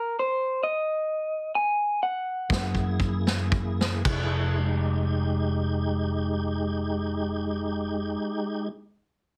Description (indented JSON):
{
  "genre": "slow blues",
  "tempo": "37-45 BPM (dotted quarters)",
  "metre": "12/8",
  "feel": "straight",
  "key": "F minor",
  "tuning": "A4 = 440 Hz",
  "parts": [
    { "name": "electric guitar through a small old amp", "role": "melody", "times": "0.0-3.0 s", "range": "Bb4 to Ab5", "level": "-28 LUFS", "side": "equal", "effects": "none" },
    { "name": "tonewheel organ", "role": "sustained chords", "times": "2.5-8.7 s", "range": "Ab3 to Ab4", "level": "-32 LUFS", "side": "equal", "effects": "slow rotary speaker, overdrive, chorus vibrato" },
    { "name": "fingered electric bass", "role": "bass", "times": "2.5-8.1 s", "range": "F1 to Gb2", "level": "-30 LUFS", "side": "equal", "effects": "none" },
    { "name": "vintage drum kit", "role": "drums", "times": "2.5-4.3 s", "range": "crash cymbal, kick drum, snare drum", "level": "-30 LUFS", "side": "equal", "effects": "none" }
  ],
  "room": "light reverb",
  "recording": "heavily compressed radio sound",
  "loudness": "-27 LUFS",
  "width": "mono",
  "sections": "0.0-4.0 A section; 4.0-9.4 B section",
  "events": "slowing down 0.0-4.0; stop 0.0-2.5; drum fill 2.5-4.0",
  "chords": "0.0 N.C.; 2.5 Gb7; 4.0 Fm7"
}